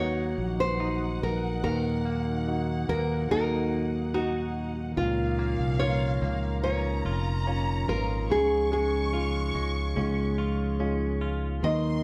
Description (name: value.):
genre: pop.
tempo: 72 BPM.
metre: 4/4.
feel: straight.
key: unclear.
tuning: A4 = 441 Hz.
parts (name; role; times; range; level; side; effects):
nylon-string guitar; melody; 0.0-12.0 s; F4 to Eb5; -32 LUFS; equal; none.
warm studio violin section; second line; 0.0-12.0 s; F5 to Db6; -41 LUFS; equal; none.
warm baby grand piano; accompaniment; 0.0-12.0 s; Bb2 to Gb4; -36 LUFS; equal; none.
mellow tonewheel organ; sustained chords; 0.0-12.0 s; Eb3 to Bb4; -40 LUFS; equal; none.
direct-recorded clean electric guitar; arpeggios; 0.0-12.0 s; Db3 to F4; -42 LUFS; equal; vibrato effect.
fingered electric bass; bass; 0.0-12.0 s; F1 to Eb2; -32 LUFS; equal; none.
room: moderate large studio reverb, RT60 1.1 s.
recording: band playing live in one room.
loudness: -28 LUFS.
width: mono.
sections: 0.0-12.0 A section.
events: none.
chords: 0.0 Ebm; 5.0 Bbm; 8.3 Db.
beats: 0.80 | 1.63 2.47 3.30 4.13 | 4.97 5.80 6.63 7.47 | 8.30 9.13 9.97 10.80 | 11.63.